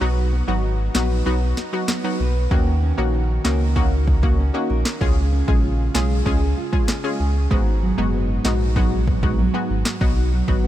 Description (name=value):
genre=dancehall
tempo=96 BPM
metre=4/4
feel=straight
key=unclear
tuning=A4 = 440 Hz
part: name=analog pluck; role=accompaniment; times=0.0-10.7 s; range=F#3 to Ab4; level=-24 LUFS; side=left 1 dB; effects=chorus
part: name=nylon-string guitar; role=arpeggios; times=0.0-10.7 s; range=Ab2 to Cb5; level=-28 LUFS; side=right 4 dB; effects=none
part: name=sub bass with octave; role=bass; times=0.0-10.7 s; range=Gb1 to Eb2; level=-20 LUFS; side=equal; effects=none
part: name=afro-pop drum kit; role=drums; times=0.9-10.6 s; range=handclaps, kick drum, snare drum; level=-22 LUFS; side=equal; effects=none
room=light reverb, digital ambience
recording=none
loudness=-18 LUFS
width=side -13 dB against mid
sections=0.0-10.7 A section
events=break 0.0-2.5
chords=0.0 B; 2.5 Ebm7; 5.0 Db; 7.5 Abm7; 10.0 B